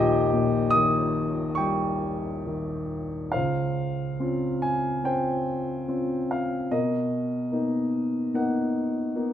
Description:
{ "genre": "classical, lyrical solo piano", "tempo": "67-74 BPM", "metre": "4/4", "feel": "rubato", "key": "Db lydian", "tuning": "A4 = 441 Hz", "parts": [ { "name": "dark baby grand piano", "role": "solo", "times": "0.0-9.3 s", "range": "Bb1 to Eb6", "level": "-24 LUFS", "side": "left 1 dB", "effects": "none" } ], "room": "moderate recital hall reverb, RT60 1.4 s", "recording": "minimal, uncompressed stereo recording", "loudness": "-24 LUFS", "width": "side -10 dB against mid", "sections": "0.0-3.3 A section; 3.3-9.3 B section", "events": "none", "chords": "0.0 Eb7; 3.3 Dbmaj7; 6.7 Cbmaj7", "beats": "0.74 1.58 2.46 | 3.34 4.20 5.04 5.88 | 6.71 7.53 8.34 9.16" }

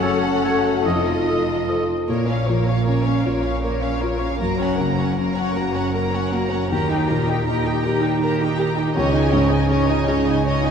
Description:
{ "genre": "cinematic", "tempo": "52 BPM (dotted quarters)", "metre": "6/8", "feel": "uneven beats, rubato", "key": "Bb minor", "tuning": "A4 = 440 Hz", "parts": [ { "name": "rich studio violin section", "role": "melody", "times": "0.0-10.7 s", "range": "Db5 to Bb5", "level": "-28 LUFS", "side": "left 3 dB", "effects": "none" }, { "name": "bright clarinet", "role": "second line", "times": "0.0-1.8 s", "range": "A4", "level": "-30 LUFS", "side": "left 1 dB", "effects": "none" }, { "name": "clear oboe", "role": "second line", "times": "0.0-1.8 s", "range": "Db5 to Eb5", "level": "-29 LUFS", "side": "equal", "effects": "none" }, { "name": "rich studio violin section", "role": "second line", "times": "0.0-10.7 s", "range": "G4 to Eb5", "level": "-27 LUFS", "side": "left 4 dB", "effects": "none" }, { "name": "felt-muted upright piano", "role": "accompaniment", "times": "0.0-10.7 s", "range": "Db2 to Db5", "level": "-23 LUFS", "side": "left 2 dB", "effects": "none" }, { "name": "warm studio viola section", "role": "accompaniment", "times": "0.0-10.7 s", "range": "Bb3 to G4", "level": "-25 LUFS", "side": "right 2 dB", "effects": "none" }, { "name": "warm French horn section", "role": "sustained chords", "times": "0.0-1.8 s", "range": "A3 to Gb4", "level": "-28 LUFS", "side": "left 4 dB", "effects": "none" }, { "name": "rich studio cello section", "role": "bass", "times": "0.0-10.7 s", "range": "F2 to Eb3", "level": "-26 LUFS", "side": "right 2 dB", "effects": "none" }, { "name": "rich studio double bass section", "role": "bass", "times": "0.0-10.7 s", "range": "F1 to Eb2", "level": "-26 LUFS", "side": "right 3 dB", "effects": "none" } ], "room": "wet scoring stage reverb, RT60 1.9 s", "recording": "heard from further back in the room", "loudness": "-18 LUFS", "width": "side -7 dB against mid", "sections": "0.0-2.1 A section; 2.1-10.7 B section", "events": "none", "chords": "0.0 Gbm; 0.8 F7; 2.1 Bbm; 4.4 Gb; 6.7 Eb; 9.0 Dbsus2", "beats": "0.84 | 2.08 3.24 | 4.40 5.55 | 6.71 7.85 | 8.95 10.07" }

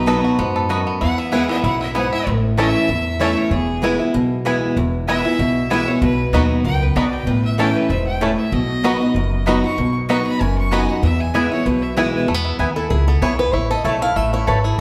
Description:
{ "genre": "bluegrass", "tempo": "192 BPM", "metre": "4/4", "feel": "swing 54% on 8ths", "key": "E major", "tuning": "A4 = 440 Hz", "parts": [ { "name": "bluegrass banjo", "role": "melody", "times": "0.0-14.8 s", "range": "A3 to A4", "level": "-27 LUFS", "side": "equal", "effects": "none" }, { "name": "clear fiddle", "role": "second line", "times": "0.0-12.3 s", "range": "G#4 to C#6", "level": "-28 LUFS", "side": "equal", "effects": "none" }, { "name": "picked acoustic archtop guitar", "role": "accompaniment", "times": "0.0-14.8 s", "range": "E2 to F5", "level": "-22 LUFS", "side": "equal", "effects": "none" }, { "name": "upright bass", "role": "bass", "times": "0.0-14.8 s", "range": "E1 to F#2", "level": "-24 LUFS", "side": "equal", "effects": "none" }, { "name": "mandolin", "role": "stabs", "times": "0.1-14.6 s", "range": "A3 to B5", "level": "-28 LUFS", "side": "equal", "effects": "none" } ], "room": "wet large studio reverb, RT60 1.4 s", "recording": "heard from further back in the room", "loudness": "-18 LUFS", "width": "mono", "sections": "0.0-2.3 A section; 2.3-12.3 A section; 12.3-14.8 A section", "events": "fiddle solo 0.0-12.3; steel-string acoustic guitar solo 12.3-14.8", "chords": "0.0 B; 1.0 E; 2.3 A; 3.5 E; 6.0 B; 7.3 A; 8.5 B; 11.0 E; 13.5 A", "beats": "0.07 0.39 0.70 | 1.01 1.32 1.64 1.95 | 2.26 2.58 2.89 3.20 | 3.52 3.83 4.14 4.46 | 4.77 5.08 5.40 5.71 | 6.02 6.34 6.65 6.96 | 7.28 7.59 7.90 8.21 | 8.53 8.84 9.15 9.47 | 9.78 10.09 10.41 10.72 | 11.03 11.35 11.66 11.97 | 12.28 12.60 12.91 13.22 | 13.54 13.85 14.16 14.47 | 14.79" }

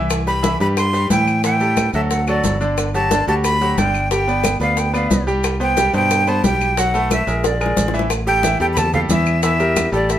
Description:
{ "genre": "latin, salsa", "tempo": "180 BPM", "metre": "4/4", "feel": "straight", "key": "A minor", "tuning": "A4 = 440 Hz", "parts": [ { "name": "bright grand piano", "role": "accompaniment", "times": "0.0-10.2 s", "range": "B2 to G5", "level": "-21 LUFS", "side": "equal", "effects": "none" }, { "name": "modern bright fingered electric bass", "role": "bass", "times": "0.0-10.2 s", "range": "G1 to A2", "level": "-21 LUFS", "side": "equal", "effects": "none" }, { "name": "bongos", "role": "percussion", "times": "0.1-10.2 s", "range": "none", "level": "-26 LUFS", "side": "left 4 dB", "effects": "none" }, { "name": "claves", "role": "percussion", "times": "0.1-9.9 s", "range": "none", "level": "-30 LUFS", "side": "left 3 dB", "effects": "none" }, { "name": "congas", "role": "percussion", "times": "0.1-10.2 s", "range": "none", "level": "-24 LUFS", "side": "equal", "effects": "none" }, { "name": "maracas", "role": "percussion", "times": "0.1-10.2 s", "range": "none", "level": "-31 LUFS", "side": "right 5 dB", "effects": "none" }, { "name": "breathy bright jazz flute", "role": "melody", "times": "0.3-10.2 s", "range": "D5 to C6", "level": "-19 LUFS", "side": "equal", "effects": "none" } ], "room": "moderate studio reverb, RT60 0.8 s", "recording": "minimal, uncompressed stereo recording", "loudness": "-15 LUFS", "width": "side -11 dB against mid", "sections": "0.0-8.1 A section; 8.1-10.2 A section", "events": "drum fill 7.4-8.1", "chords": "0.1 Cmaj7; 1.4 A5; 2.1 D; 2.8 Gmaj9; 4.1 G7; 5.4 C5; 6.8 B5; 7.4 Bb7; 8.1 A5; 9.4 Edim", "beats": "| 0.10 0.44 0.77 1.10 | 1.44 1.77 2.10 2.44 | 2.77 3.11 3.44 3.77 | 4.11 4.44 4.77 5.11 | 5.44 5.77 6.11 6.44 | 6.77 7.11 7.44 7.77 | 8.10 8.44 8.77 9.10 | 9.43 9.77 10.10" }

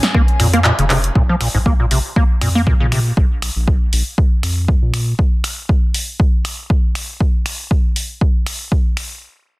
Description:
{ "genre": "acid house", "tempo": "119 BPM", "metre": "4/4", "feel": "swing 55% on 16ths", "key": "Bb minor", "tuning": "A4 = 443 Hz", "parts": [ { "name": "warm studio string section", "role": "sustained chords", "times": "0.0-1.1 s", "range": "F3 to Ab4", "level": "-28 LUFS", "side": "left 1 dB", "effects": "sidechain pumping" }, { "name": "punchy analog drum machine", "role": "drums", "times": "0.0-9.1 s", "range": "finger snaps, handclaps, hi-hat, rim click, snare drum", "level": "-21 LUFS", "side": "equal", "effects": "soft clipping on snare" }, { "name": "acid bass, square", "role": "riff", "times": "0.1-3.0 s", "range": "Ab2 to Bb3", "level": "-18 LUFS", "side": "equal", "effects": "overdrive, analog chorus, dub echo" }, { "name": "electronic kick drum", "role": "drums", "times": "0.1-8.8 s", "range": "none", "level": "-15 LUFS", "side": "equal", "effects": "overdrive" }, { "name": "round analog bass", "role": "bass", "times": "0.4-5.1 s", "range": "F1 to Bb2", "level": "-18 LUFS", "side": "equal", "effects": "tube saturation, sidechain pumping" } ], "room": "digital ambience", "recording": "dense, heavily limited modern master", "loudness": "-14 LUFS", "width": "side -21 dB against mid", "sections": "0.0-1.2 A section; 1.2-9.2 B section", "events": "drop 0.0-1.2; kick drops out 0.6-1.2; drum fill 0.9", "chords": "0.0 Bbm; 1.2 N.C.", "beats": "0.14 0.65 | 1.15 1.66 2.16 2.67 | 3.17 3.67 4.18 4.68 | 5.19 5.69 6.20 6.70 | 7.20 7.71 8.21 8.72" }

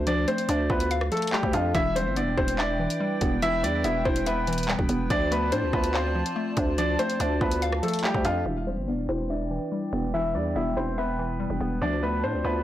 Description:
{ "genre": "hip hop, drill", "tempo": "143 BPM", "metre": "4/4", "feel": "half-time", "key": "E phrygian", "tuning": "A4 = 439 Hz", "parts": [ { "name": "clear upright piano", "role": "melody", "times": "0.0-12.6 s", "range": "F3 to E5", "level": "-27 LUFS", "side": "equal", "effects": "low-pass filter, digital delay" }, { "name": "hollow square pluck", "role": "accompaniment", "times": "0.0-12.6 s", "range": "E3 to F5", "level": "-30 LUFS", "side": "left 1 dB", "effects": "chorus, low-pass filter" }, { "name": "growling 808-style bass", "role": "bass", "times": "0.0-12.6 s", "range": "E1 to A2", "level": "-29 LUFS", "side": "right 1 dB", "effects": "none" }, { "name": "drill drum kit", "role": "drums", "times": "0.1-8.3 s", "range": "handclaps, hi-hat, kick drum, rim click", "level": "-29 LUFS", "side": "equal", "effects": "none" }, { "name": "hollow soft pad", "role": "sustained chords", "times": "2.0-12.6 s", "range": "E4 to A5", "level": "-36 LUFS", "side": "right 1 dB", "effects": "chorus, low-pass filter" } ], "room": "light reverb", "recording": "blown-out, overdriven recording, overdrive", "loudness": "-23 LUFS", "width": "side -12 dB against mid", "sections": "0.0-8.5 A section; 8.5-12.6 B section", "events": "filter sweep 8.5-12.6", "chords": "0.0 Dm; 1.7 Em; 5.1 Dm; 8.5 Em; 11.8 Dm", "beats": "| 0.07 0.49 0.91 1.33 | 1.75 2.17 2.59 3.00 | 3.42 3.84 4.26 4.68 | 5.10 5.52 5.94 6.36 | 6.78 7.20 7.62 8.04 | 8.46 8.88 9.30 9.72 | 10.14 10.56 10.98 11.40 | 11.82 12.24" }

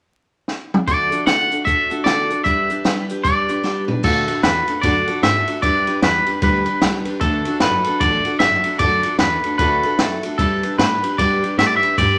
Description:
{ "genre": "rockabilly", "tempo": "152 BPM", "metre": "4/4", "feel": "swing 60% on 8ths", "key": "D major", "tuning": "A4 = 440 Hz", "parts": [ { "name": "compact cocktail drum kit", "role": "drums", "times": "0.5-12.1 s", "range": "crash cymbal, hi-hat, kick drum, ride cymbal, snare drum, toms", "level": "-24 LUFS", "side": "equal", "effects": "none" }, { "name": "twangy electric guitar", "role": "melody", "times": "0.9-12.2 s", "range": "A4 to F#5", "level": "-20 LUFS", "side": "equal", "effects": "none" }, { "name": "picked steel-string acoustic guitar", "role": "accompaniment", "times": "0.9-12.2 s", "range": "D3 to B4", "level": "-25 LUFS", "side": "equal", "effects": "none" }, { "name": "upright bass", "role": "bass", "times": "4.0-12.2 s", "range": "F#1 to B2", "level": "-29 LUFS", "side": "equal", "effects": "none" } ], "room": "moderate large studio reverb, RT60 1.1 s", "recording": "vinyl crackle", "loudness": "-18 LUFS", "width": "mono", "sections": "0.9-4.0 A section; 4.0-12.2 B section", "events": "drum fill 0.5-0.9, 3.6-4.0", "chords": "0.0 N.C.; 0.9 D; 2.5 G; 4.0 D; 5.6 G; 7.2 D; 10.4 G", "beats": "0.09 0.48 | 0.88 1.27 1.67 2.07 | 2.46 2.86 3.25 3.65 | 4.05 4.44 4.84 5.23 | 5.63 6.03 6.42 6.82 | 7.21 7.61 8.00 8.40 | 8.80 9.19 9.59 9.98 | 10.38 10.78 11.18 11.57 | 11.97" }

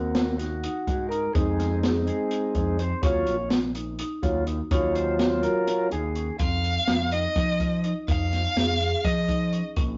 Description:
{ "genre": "progressive instrumental, band music in an uneven meter", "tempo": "250 BPM (eighths)", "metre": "7/8", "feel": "straight", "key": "unclear", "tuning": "A4 = 440 Hz", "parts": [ { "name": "tonewheel organ", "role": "accompaniment", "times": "0.0-6.4 s", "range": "Gb3 to Db5", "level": "-28 LUFS", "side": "equal", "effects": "slow rotary speaker" }, { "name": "marimba with medium mallets", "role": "arpeggios", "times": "0.0-10.0 s", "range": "C4 to Ab4", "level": "-36 LUFS", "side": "equal", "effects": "none" }, { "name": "growling picked electric bass", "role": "bass", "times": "0.0-10.0 s", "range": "Bb1 to F3", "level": "-31 LUFS", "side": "equal", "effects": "overdrive" }, { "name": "open jazz drum kit", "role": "drums", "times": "0.1-9.9 s", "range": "hi-hat, kick drum, snare drum", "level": "-29 LUFS", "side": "equal", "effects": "none" }, { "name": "warm violin", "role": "melody", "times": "6.4-9.6 s", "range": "Eb5 to F5", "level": "-30 LUFS", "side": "equal", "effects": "none" } ], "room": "moderate studio reverb, RT60 0.6 s", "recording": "rough rehearsal-room recording, warm saturation, nothing above 7.5 kHz", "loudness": "-25 LUFS", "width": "mono", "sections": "0.0-6.4 A section; 6.4-10.0 B section", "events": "tonewheel organ solo 0.0-6.4", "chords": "0.0 Ab7; 1.4 Fm7; 3.0 Ebm7; 4.7 Ebm9; 6.4 Fm7", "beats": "0.16 0.40 0.64 0.88 1.12 | 1.36 1.60 1.84 2.08 2.31 2.56 2.79 | 3.03 3.27 3.51 3.75 3.99 4.23 4.47 | 4.71 4.95 5.19 5.43 5.67 5.92 6.16 | 6.40 6.64 6.88 7.12 7.36 7.60 7.84 | 8.08 8.32 8.56 8.80 9.05 9.29 9.53 | 9.77" }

